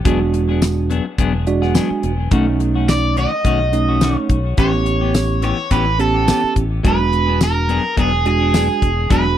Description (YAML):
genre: straight-eighth soul blues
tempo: 106 BPM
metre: 4/4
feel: swing 54% on 16ths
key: E mixolydian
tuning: A4 = 438 Hz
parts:
  - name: clean electric guitar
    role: stabs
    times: 0.0-9.3 s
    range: D#3 to G#4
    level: -24 LUFS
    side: left 8 dB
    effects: spring reverb, tape echo
  - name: bell-like tine electric piano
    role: accompaniment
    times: 0.1-9.4 s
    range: G#3 to G#5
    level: -20 LUFS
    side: right 6 dB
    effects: none
  - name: fingered electric bass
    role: bass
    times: 0.1-9.4 s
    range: E1 to B1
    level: -19 LUFS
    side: left 1 dB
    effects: none
  - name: damped 70s drum kit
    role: drums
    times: 0.1-9.2 s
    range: hi-hat, kick drum, snare drum, tambourine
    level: -17 LUFS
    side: left 1 dB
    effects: none
  - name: overdriven electric guitar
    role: melody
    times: 2.9-9.4 s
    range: G#4 to D#5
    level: -19 LUFS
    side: right 2 dB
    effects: none
room: little or no reverb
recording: dry, close 1970s-style studio recording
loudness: -14 LUFS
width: side -11 dB against mid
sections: 0.0-9.4 A section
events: tine electric piano fill 1.2-2.3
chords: 0.1 E9; 2.3 B9; 4.6 A9; 6.8 E9